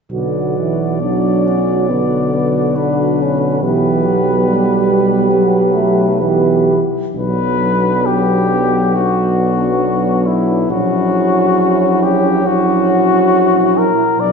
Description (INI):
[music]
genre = classical, hymn-like piece for brass band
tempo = 68 BPM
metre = 4/4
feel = uneven beats, rubato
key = B minor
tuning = A4 = 439 Hz
[part]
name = mellow cornet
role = melody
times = 0.1-14.3 s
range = E4 to D5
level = -18 LUFS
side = left 5 dB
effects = none
[part]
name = mellow French horn section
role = second line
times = 0.1-14.3 s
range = D4 to G4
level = -18 LUFS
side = right 4 dB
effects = none
[part]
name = clear euphonium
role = accompaniment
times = 0.1-14.3 s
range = A3 to D4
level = -20 LUFS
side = left 2 dB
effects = none
[part]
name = warm trombone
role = accompaniment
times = 0.1-14.3 s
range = D3 to G3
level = -19 LUFS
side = right 3 dB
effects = none
[part]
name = clear tuba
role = bass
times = 0.1-14.3 s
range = A#1 to B1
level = -19 LUFS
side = left 1 dB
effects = none
[sound]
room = wet concert hall reverb, RT60 2.1 s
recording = heard from further back in the room, nothing above 7.6 kHz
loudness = -12 LUFS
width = side -5 dB against mid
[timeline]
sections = 0.1-7.2 A section; 7.2-14.3 B section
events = none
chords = 0.1 Bm; 3.6 Em/B; 7.2 Bm; 10.7 F#7/A#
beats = | 0.12 1.01 1.89 2.77 | 3.62 4.45 5.30 6.20 | 7.16 8.06 8.95 9.84 | 10.72 11.60 12.47 13.33 | 14.19